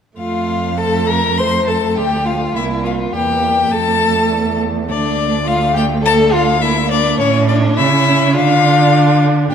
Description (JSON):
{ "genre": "quick classical-period movement for string quartet", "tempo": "103 BPM", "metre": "4/4", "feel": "rubato", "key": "F major", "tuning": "A4 = 444 Hz", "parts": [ { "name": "warm violin", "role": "melody", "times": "0.2-9.5 s", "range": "C#5 to C6", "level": "-17 LUFS", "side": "left 6 dB", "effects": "none" }, { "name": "rich violin", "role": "second line", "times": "0.2-9.5 s", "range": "C#4 to C5", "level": "-19 LUFS", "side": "left 1 dB", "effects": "none" }, { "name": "dark viola", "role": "accompaniment", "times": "0.2-9.5 s", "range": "A3 to D4", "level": "-20 LUFS", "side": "right 2 dB", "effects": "none" }, { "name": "warm cello", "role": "bass", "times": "0.2-9.5 s", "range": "C2 to D3", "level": "-18 LUFS", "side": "right 4 dB", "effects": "none" } ], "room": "wet concert hall reverb, RT60 2.3 s", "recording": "minimal, uncompressed stereo recording", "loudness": "-12 LUFS", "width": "side -8 dB against mid", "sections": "0.2-9.5 A section", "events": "none", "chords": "0.2 F; 2.6 C7; 3.7 F; 4.9 D5; 7.2 A; 8.4 Dm" }